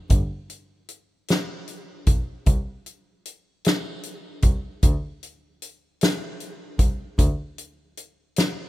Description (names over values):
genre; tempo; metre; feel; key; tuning
slow gospel; 51 BPM (dotted quarters); 6/8; straight; unclear; A4 = 440 Hz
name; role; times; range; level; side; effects
rich double bass; bass; 0.1-7.3 s; G1 to D2; -26 LUFS; equal; none
natural country drum kit; drums; 0.1-8.6 s; hi-hat, kick drum, snare drum; -21 LUFS; equal; none
room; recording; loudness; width
little or no reverb; rough home demo mix; -21 LUFS; side -17 dB against mid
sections
0.0-8.7 A section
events
none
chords
none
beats
| 0.12 1.30 | 2.48 3.66 | 4.83 6.01 | 7.19 8.37